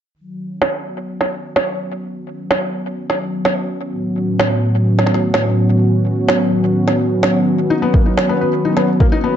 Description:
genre	IDM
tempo	127 BPM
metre	4/4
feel	straight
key	B major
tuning	A4 = 440 Hz
part	warm analog pad	sustained chords	0.1-9.4 s	A2 to F#4	-17 LUFS	equal	chorus, vintage 12-bit sampler grit
part	electronic snare drum	drums	0.6-8.9 s	none	-19 LUFS	right 2 dB	low-pass filter on snare, low-pass filter on room, tape echo
part	felt-muted upright piano	arpeggios	7.7-9.3 s	A#3 to B4	-18 LUFS	left 6 dB	tape echo
part	electronic kick drum	drums	7.9-9.1 s	none	-13 LUFS	equal	none
room	moderate digital room reverb, RT60 1.1 s, digital ambience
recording	dark, warm production, nothing above 7.9 kHz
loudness	-14 LUFS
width	side -9 dB against mid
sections	0.1-9.4 A section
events	none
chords	0.1 B; 3.9 A; 7.7 B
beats	| 0.14 0.62 1.09 1.56 | 2.03 2.51 2.98 3.45 | 3.92 4.40 4.87 5.34 | 5.81 6.29 6.76 7.23 | 7.70 8.18 8.65 9.12

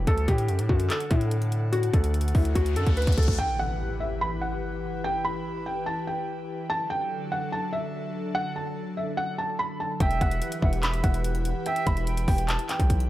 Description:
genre	hip hop, trap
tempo	145 BPM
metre	4/4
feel	half-time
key	E minor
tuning	A4 = 439 Hz
part	felt-muted upright piano	melody	0.0-13.1 s	E4 to B5	-30 LUFS	equal	low-pass filter
part	airy breathy pad	sustained chords	0.0-13.1 s	D3 to F#5	-34 LUFS	left 1 dB	chorus
part	distorted 808-style bass	bass	0.0-3.4, 10.0-13.1 s	E1 to A2	-25 LUFS	equal	distortion
part	trap drum kit	drums	0.1-3.4, 10.0-13.1 s	handclaps, hi-hat, kick drum	-25 LUFS	equal	none
part	riser and impact	sound effects	2.5-5.0 s	none	-35 LUFS	equal	none
part	reedy silver concert flute	second line	10.0-12.5 s	E5 to G5	-35 LUFS	right 5 dB	tape echo
room	digital ambience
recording	none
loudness	-24 LUFS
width	side -15 dB against mid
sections	0.0-3.4 A section; 3.4-13.1 B section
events	riser 2.5-3.4; drum fill 2.6-3.4; impact 3.4-5.0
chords	0.1 D; 3.4 Em; 6.7 D; 10.0 Em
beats	| 0.07 0.49 0.90 1.31 | 1.73 2.14 2.56 2.97 | 3.38 3.80 4.21 4.62 | 5.04 5.45 5.87 6.28 | 6.69 7.11 7.52 7.93 | 8.35 8.76 9.18 9.59 | 10.00 10.42 10.83 11.24 | 11.66 12.07 12.49 12.90

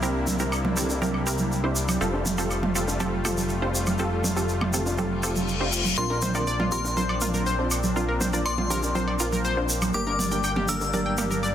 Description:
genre	progressive house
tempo	121 BPM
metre	4/4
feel	straight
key	unclear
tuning	A4 = 441 Hz
part	supersaw pad	sustained chords	0.0-11.5 s	C3 to F4	-32 LUFS	left 1 dB	none
part	wide unison pluck	stabs	0.0-11.3 s	Bb3 to C5	-30 LUFS	right 1 dB	dub echo
part	fat analog bass	bass	0.0-11.5 s	F1 to C2	-30 LUFS	left 1 dB	none
part	breakbeat sampler-style drum kit	drums	0.0-11.5 s	hi-hat, ride cymbal, snare drum	-38 LUFS	equal	none
part	tube shaker	percussion	0.0-11.5 s	none	-32 LUFS	equal	none
part	electronic toms, congas and woodblock	percussion	0.3-11.4 s	none	-29 LUFS	right 3 dB	none
part	reverse cymbal	sound effects	5.2-6.0 s	none	-30 LUFS	left 7 dB	none
part	glassy synth bell	melody	6.0-11.5 s	C6 to E6	-30 LUFS	left 3 dB	chorus, tape echo
part	analog pluck	arpeggios	6.0-11.5 s	F4 to G5	-30 LUFS	left 2 dB	chorus, dub echo
room	moderate lush hall reverb, RT60 2.3 s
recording	dense, heavily limited modern master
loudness	-22 LUFS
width	side -10 dB against mid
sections	0.0-11.5 A section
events	reverse cymbal 5.2-6.0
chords	0.0 C7; 2.0 Fadd9; 6.0 Bbadd9; 9.9 Gm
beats	| 0.03 0.52 1.02 1.51 | 2.01 2.51 3.00 3.50 | 3.99 4.49 4.99 5.48 | 5.98 6.47 6.97 7.46 | 7.96 8.46 8.95 9.45 | 9.94 10.44 10.94 11.43

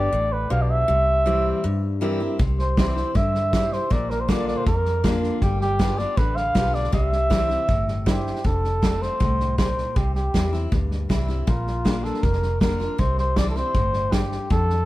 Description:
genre	honky-tonk and classic country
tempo	159 BPM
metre	4/4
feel	straight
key	unclear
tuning	A4 = 440 Hz
part	trumpet with cup mute	melody	0.0-14.9 s	E4 to F5	-25 LUFS	right 1 dB	none
part	bright concert grand piano	accompaniment	0.0-8.4 s	D4 to C5	-34 LUFS	right 4 dB	none
part	picked steel-string acoustic guitar	accompaniment	0.0-14.9 s	F2 to G4	-29 LUFS	left 3 dB	none
part	vintage muted fingered electric bass	bass	0.0-14.8 s	F1 to G2	-25 LUFS	equal	none
part	natural country drum kit	drums	2.4-14.7 s	hi-hat, kick drum, snare drum	-23 LUFS	equal	none
room	light reverb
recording	heard from further back in the room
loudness	-20 LUFS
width	side -17 dB against mid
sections	0.0-8.4 A section; 8.4-14.9 B section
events	none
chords	0.0 G; 0.9 C; 3.9 Bb; 5.4 G7; 6.9 C; 8.4 F; 10.0 C; 11.5 Bb; 13.0 C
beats	0.13 0.51 | 0.88 1.26 1.64 2.02 | 2.40 2.77 3.15 3.53 | 3.91 4.29 4.67 5.04 | 5.42 5.80 6.18 6.55 | 6.93 7.31 7.69 8.07 | 8.45 8.82 9.20 9.58 | 9.96 10.34 10.72 11.10 | 11.47 11.85 12.23 12.61 | 12.99 13.37 13.75 14.13 | 14.51

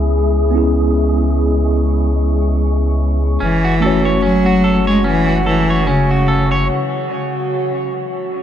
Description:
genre	trip hop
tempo	73 BPM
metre	4/4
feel	swing 58% on 16ths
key	unclear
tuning	A4 = 440 Hz
part	mellow tine electric piano	accompaniment	0.0-6.7 s	A3 to C#5	-19 LUFS	equal	medium stereo tremolo, harmonic tremolo, tape echo
part	deep dark ambient pad	sustained chords	0.0-8.4 s	F#4 to C#6	-23 LUFS	left 1 dB	chorus, built-in reverb
part	warm sub bass	bass	0.0-6.7 s	F#1 to C#2	-17 LUFS	equal	none
part	wind-like tuned noise texture	texture	0.0-6.7 s	G#3 to G#4	-28 LUFS	right 1 dB	built-in reverb
part	rich cello	melody	3.4-6.7 s	C#3 to G#3	-16 LUFS	left 1 dB	tape echo
part	clean electric guitar	arpeggios	3.4-6.7 s	C#4 to C#5	-22 LUFS	right 2 dB	tape echo
room	light reverb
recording	none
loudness	-13 LUFS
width	side -10 dB against mid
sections	0.0-8.4 A section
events	break 6.7-8.4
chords	0.0 C#m7; 3.4 F#m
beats	| 0.12 0.94 1.76 2.58 | 3.40 4.22 5.05 5.87 | 6.69 7.51 8.33

